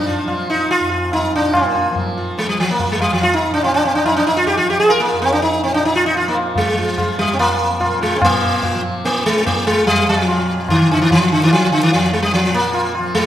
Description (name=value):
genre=indian classical, Hindustani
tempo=144 BPM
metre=4/4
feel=straight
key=F raga bageshri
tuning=A4 = 445 Hz
part: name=sitar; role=melody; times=0.0-13.3 s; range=D3 to Bb4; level=-15 LUFS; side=equal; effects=none
part: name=tanpura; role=drone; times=0.0-13.3 s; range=F2 to F3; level=-26 LUFS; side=equal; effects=none
part: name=tabla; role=percussion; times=0.3-13.3 s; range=none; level=-21 LUFS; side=equal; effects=none
room=wet recital hall reverb, RT60 1.5 s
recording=none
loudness=-14 LUFS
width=side -11 dB against mid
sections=0.0-8.2 A section; 8.2-13.3 B section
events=speeding up 0.0-13.3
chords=none